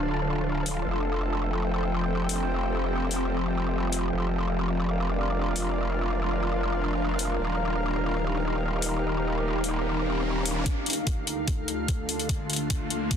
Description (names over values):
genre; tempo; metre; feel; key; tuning
heavy wobble dubstep; 147 BPM; 4/4; half-time; D phrygian; A4 = 440 Hz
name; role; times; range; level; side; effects
lush unison pad; sustained chords; 0.0-13.2 s; D2 to A5; -31 LUFS; equal; chorus, sidechain pumping
growl bass; bass; 0.0-10.6 s; D1 to F1; -28 LUFS; equal; chorus, overdrive
granular cloud pad; texture; 0.0-13.2 s; C4 to F5; -31 LUFS; equal; built-in reverb, sidechain pumping
electronic hi-hat; drums; 0.7-13.2 s; none; -30 LUFS; left 4 dB; high-pass filter on hats
riser; sound effects; 9.1-13.2 s; none; -37 LUFS; left 1 dB; none
electronic kick drum; drums; 10.7-13.2 s; none; -28 LUFS; equal; none
room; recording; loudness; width
light reverb; dense, heavily limited modern master; -25 LUFS; side -8 dB against mid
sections
0.0-10.7 A section; 10.7-13.2 B section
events
riser 9.1-10.7, 10.7-13.2; build-up 10.7-13.2; filter sweep on analog synth pad 10.7-13.2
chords
0.0 Dm; 0.9 Fadd9; 4.1 Bb/F; 7.4 Ebadd9; 10.7 Dm